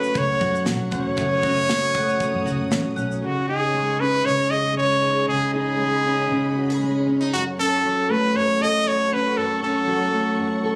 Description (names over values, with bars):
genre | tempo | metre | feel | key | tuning
acoustic pop | 117 BPM | 4/4 | swing 55% on 16ths | unclear | A4 = 440 Hz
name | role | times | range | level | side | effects
bright trumpet | melody | 0.0-10.8 s | F#4 to D#5 | -24 LUFS | equal | none
fingerpicked plugged-in steel-string acoustic guitar | accompaniment | 0.0-10.8 s | F#2 to A4 | -26 LUFS | equal | double-tracked
overdriven reed electric piano | accompaniment | 0.0-3.2 s | A3 to C#5 | -34 LUFS | equal | none
rich studio string section | sustained chords | 0.0-10.8 s | A3 to D#6 | -36 LUFS | equal | none
mandolin | arpeggios | 0.0-3.8 s | A3 to F#5 | -38 LUFS | equal | digital delay
vintage muted fingered electric bass | bass | 0.0-3.2 s | F#1 to F#2 | -30 LUFS | equal | none
modern studio drum kit | drums | 0.0-3.2 s | kick drum, shaker, snare drum | -30 LUFS | equal | none
room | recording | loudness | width
little or no reverb | recorded on a phone in the room, club ambience | -21 LUFS | mono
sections
0.0-3.2 A section; 3.2-10.8 A section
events
none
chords
0.0 F#m; 3.2 C#sus2; 7.3 F#m